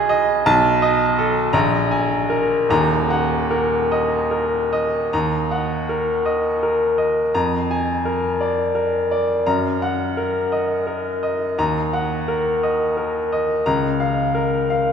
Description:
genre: classical, romantic character piece for solo piano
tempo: 48-58 BPM (dotted quarters)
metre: 6/8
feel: rubato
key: Eb minor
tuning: A4 = 439 Hz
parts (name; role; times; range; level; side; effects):
- clear baby grand piano; solo; 0.0-14.9 s; Eb1 to Cb6; -17 LUFS; equal; none
room: wet cathedral reverb, RT60 4.4 s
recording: recorded in a church or concert hall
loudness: -17 LUFS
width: side -7 dB against mid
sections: 0.0-5.1 A section; 5.1-14.9 B section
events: none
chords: 0.4 B7; 1.5 Absus2/Bb; 2.7 Ebm; 7.3 Bb7/F; 9.5 Ebm/Gb; 11.6 Ebm; 13.7 Bbm/Db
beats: | 0.44 1.53 | 2.70 3.91 | 5.12 6.24 | 7.34 8.39 | 9.45 10.52 | 11.57 12.62 | 13.66 14.70

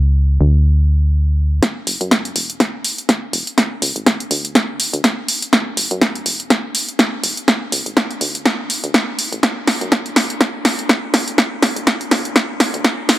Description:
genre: piano house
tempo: 123 BPM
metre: 4/4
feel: swing 57% on 16ths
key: unclear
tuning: A4 = 438 Hz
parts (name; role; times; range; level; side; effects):
- solid FM bass; bass; 0.0-12.8 s; E1 to F#2; -16 LUFS; equal; sidechain pumping, high-pass filter
- electronic kick drum; drums; 1.6-13.0 s; none; -20 LUFS; equal; high-pass filter on kick
- punchy analog drum machine; drums; 1.6-13.2 s; hi-hat, snare drum; -15 LUFS; equal; high-pass filter on snare, low-pass filter on snare, high-pass filter on hats, low-pass filter on hats
room: light reverb, digital ambience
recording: none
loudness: -14 LUFS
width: side -15 dB against mid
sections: 0.0-1.6 A section; 1.6-13.2 B section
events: filter sweep 0.0-1.6; build-up 1.6-13.2; drum fill 1.6-13.2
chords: none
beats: 0.16 0.65 1.14 | 1.63 2.11 2.60 3.09 | 3.58 4.07 4.55 5.04 | 5.53 6.02 6.50 6.99 | 7.48 7.97 8.46 8.94 | 9.43 9.92 10.41 10.89 | 11.38 11.87 12.36 12.85

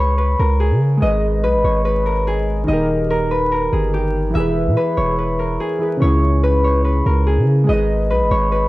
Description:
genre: hip hop, drill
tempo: 144 BPM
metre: 4/4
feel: half-time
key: G# harmonic minor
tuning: A4 = 440 Hz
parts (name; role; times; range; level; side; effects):
- Celtic harp; melody; 0.0-8.7 s; G4 to E5; -20 LUFS; left 1 dB; low-pass filter, cassette tape, plate reverb, tape echo
- long sustained 808-style bass; bass; 0.0-8.7 s; D#1 to C#3; -18 LUFS; equal; none
- warbly lo-fi synth keys; accompaniment; 1.0-8.7 s; C#3 to D#5; -21 LUFS; right 1 dB; chorus, low-pass filter, plate reverb
room: light reverb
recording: home recording on cassette, vinyl crackle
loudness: -15 LUFS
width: side -18 dB against mid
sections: 0.0-7.7 A section; 7.7-8.7 A section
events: none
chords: 0.0 G#madd11/C#; 1.0 G#m; 2.7 D#; 4.4 E; 6.0 C#m; 7.7 G#m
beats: 0.18 0.60 | 1.02 1.43 1.85 2.27 | 2.68 3.10 3.52 3.93 | 4.35 4.77 5.18 5.60 | 6.02 6.43 6.85 7.27 | 7.68 8.10 8.52

